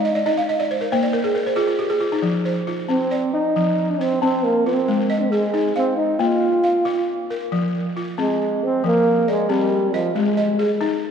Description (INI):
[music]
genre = west african traditional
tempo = 91 BPM (dotted quarters)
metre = 12/8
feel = straight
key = F dorian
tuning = A4 = 441 Hz
[part]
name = breathy trombone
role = melody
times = 0.0-10.8 s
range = F3 to F4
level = -20 LUFS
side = right 1 dB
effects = none
[part]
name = balafon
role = arpeggios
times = 0.0-11.1 s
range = F3 to F5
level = -20 LUFS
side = left 1 dB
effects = none
[sound]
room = wet church reverb, RT60 3.5 s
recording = recorded in a church or concert hall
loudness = -18 LUFS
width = side -7 dB against mid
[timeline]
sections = 0.0-7.5 A section; 7.5-11.1 A section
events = balafon fill 0.0-2.2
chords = 0.0 N.C.; 0.9 Bb5; 2.2 F5; 4.9 Ab5; 6.2 Bb5; 7.5 Fm; 10.2 Ab5